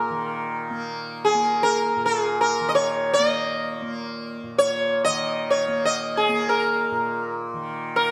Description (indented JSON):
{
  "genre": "indian classical, Hindustani",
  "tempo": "free time",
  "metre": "none",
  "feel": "none",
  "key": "unclear",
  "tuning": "A4 = 440 Hz",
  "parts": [
    { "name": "sitar", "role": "melody", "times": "0.0-8.1 s", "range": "Ab4 to Eb5", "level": "-24 LUFS", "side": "equal", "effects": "none" },
    { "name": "tanpura", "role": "drone", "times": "0.0-8.1 s", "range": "Bb2 to Bb3", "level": "-32 LUFS", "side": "equal", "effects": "none" }
  ],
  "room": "moderate scoring stage reverb, RT60 1.7 s",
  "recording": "none",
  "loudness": "-23 LUFS",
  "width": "mono",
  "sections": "0.0-8.1 A section",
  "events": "none",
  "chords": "none",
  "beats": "free time"
}